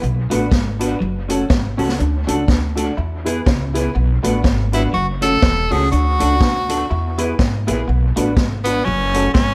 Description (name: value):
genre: ska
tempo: 122 BPM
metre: 4/4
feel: swing 58% on 8ths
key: unclear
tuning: A4 = 438 Hz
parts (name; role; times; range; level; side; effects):
- electric guitar at the edge of break-up; riff; 0.0-9.5 s; E3 to G#4; -30 LUFS; equal; dub echo
- upright bass; bass; 0.0-9.5 s; E1 to G#2; -23 LUFS; equal; none
- swinging big-band drum kit; drums; 0.0-9.5 s; hi-hat, kick drum, snare drum; -21 LUFS; equal; dub echo
- semi-hollow electric guitar; accompaniment; 0.3-9.4 s; A3 to G#4; -27 LUFS; equal; none
- honky-tonk upright piano; stabs; 0.3-9.3 s; C#4 to B4; -28 LUFS; equal; none
- edgy tenor saxophone; melody; 4.7-9.5 s; B3 to A4; -22 LUFS; equal; none
room: light reverb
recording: none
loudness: -18 LUFS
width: mono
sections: 0.0-9.5 A section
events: none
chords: 0.0 Bm; 1.0 F#m; 2.0 D; 3.0 E; 4.0 Bm; 4.9 F#m; 5.9 D; 6.9 E; 7.9 Bm; 8.9 F#m